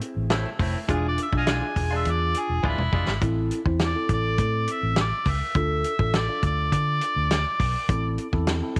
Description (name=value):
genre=straight-eighth soul blues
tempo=103 BPM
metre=4/4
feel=straight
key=A harmonic minor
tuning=A4 = 441 Hz
part: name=mellow tine electric piano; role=accompaniment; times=0.0-8.8 s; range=C4 to C5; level=-33 LUFS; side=equal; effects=phaser
part: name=warm soul drum kit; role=drums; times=0.0-8.8 s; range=hi-hat, kick drum, snare drum, toms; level=-29 LUFS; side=equal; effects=none
part: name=vintage muted fingered electric bass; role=bass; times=0.2-8.8 s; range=D1 to D3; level=-28 LUFS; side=equal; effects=none
part: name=direct-recorded clean electric guitar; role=stabs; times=0.3-3.1 s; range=A2 to F4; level=-35 LUFS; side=equal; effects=none
part: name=mellow harmonica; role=melody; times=0.9-8.2 s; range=E4 to G#5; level=-30 LUFS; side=equal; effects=overdrive
room=light reverb, studio reverb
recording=none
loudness=-24 LUFS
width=mono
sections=0.0-3.2 A section; 3.2-8.8 B section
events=drum fill 2.6-3.2; harmonica solo 3.2-8.8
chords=0.0 Am; 0.9 E7b9; 3.2 Am; 5.6 Dm; 7.9 Am